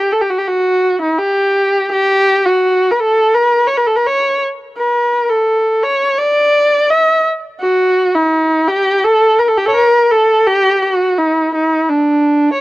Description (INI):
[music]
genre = persian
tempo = 84 BPM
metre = 4/4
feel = straight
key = unclear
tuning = A4 = 440 Hz
[part]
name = warm kamancheh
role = solo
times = 0.0-12.6 s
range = D4 to E5-48c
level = -11 LUFS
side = equal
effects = none
[sound]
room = little or no reverb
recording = dry, close 1970s-style studio recording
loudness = -11 LUFS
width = side -18 dB against mid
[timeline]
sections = 0.0-12.6 A section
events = none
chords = none